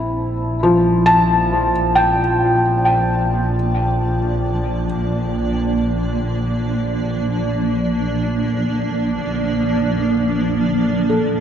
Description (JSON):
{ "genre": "ambient", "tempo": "free time", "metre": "none", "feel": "none", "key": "Bb lydian", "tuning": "A4 = 438 Hz", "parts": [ { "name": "granular cloud pad", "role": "sustained chords", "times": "0.0-11.4 s", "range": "F3 to A5", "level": "-20 LUFS", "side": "right 1 dB", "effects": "built-in reverb" }, { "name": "felt-muted upright piano", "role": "arpeggios", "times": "0.0-11.4 s", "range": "F3 to A5", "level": "-17 LUFS", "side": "left 1 dB", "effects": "tape echo" }, { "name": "rich studio double bass section", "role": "bass", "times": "0.0-11.4 s", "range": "Bb1", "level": "-23 LUFS", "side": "equal", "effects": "none" } ], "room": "wet cathedral reverb, RT60 5.4 s", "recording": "dark, warm production", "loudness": "-16 LUFS", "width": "side -9 dB against mid", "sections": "0.0-11.4 A section", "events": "fade-in on ambient pad 0.0-11.4; fade-out on double bass section 0.0-11.4", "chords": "0.0 Bb" }